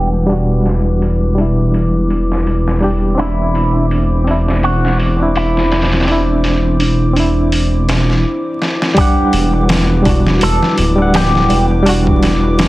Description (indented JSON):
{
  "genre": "trip hop",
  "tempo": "83 BPM",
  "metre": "4/4",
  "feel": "swing 57% on 16ths",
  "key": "E minor",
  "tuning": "A4 = 440 Hz",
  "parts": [
    { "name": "electric guitar with an envelope filter", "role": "melody", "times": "0.0-11.7 s", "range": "E4 to A4", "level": "-20 LUFS", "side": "equal", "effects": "phaser, tape echo" },
    { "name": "barky reed electric piano", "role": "accompaniment", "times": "0.0-12.7 s", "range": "G3 to F#5", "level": "-18 LUFS", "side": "equal", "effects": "overdrive, fast tremolo, tape echo" },
    { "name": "dark analog pad", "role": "sustained chords", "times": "0.0-12.7 s", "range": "E4 to D6", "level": "-21 LUFS", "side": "left 2 dB", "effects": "chorus" },
    { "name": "dark detuned saw bass", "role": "bass", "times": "0.0-12.7 s", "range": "D1 to E1", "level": "-14 LUFS", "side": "equal", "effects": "tube saturation" },
    { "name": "trip hop sampler-style drum kit", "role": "drums", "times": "0.3-12.7 s", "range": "hi-hat, kick drum, snare drum", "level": "-18 LUFS", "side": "equal", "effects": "overdrive, high-pass filter on hats, small room ambience, high-pass filter on snare, high-pass filter on kick" },
    { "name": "music box", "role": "arpeggios", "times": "3.2-12.7 s", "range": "D4 to D5", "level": "-22 LUFS", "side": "right 4 dB", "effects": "tape echo" }
  ],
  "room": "little or no reverb",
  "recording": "dense, heavily limited modern master, vinyl crackle, low-pass filter",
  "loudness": "-11 LUFS",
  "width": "side -17 dB against mid",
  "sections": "0.0-9.0 A section; 9.0-12.7 B section",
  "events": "filter sweep 0.0-9.0; break 8.2-9.0; drum fill 8.6-9.0",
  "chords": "0.0 Em7; 3.2 Cadd9/E; 9.0 Em7"
}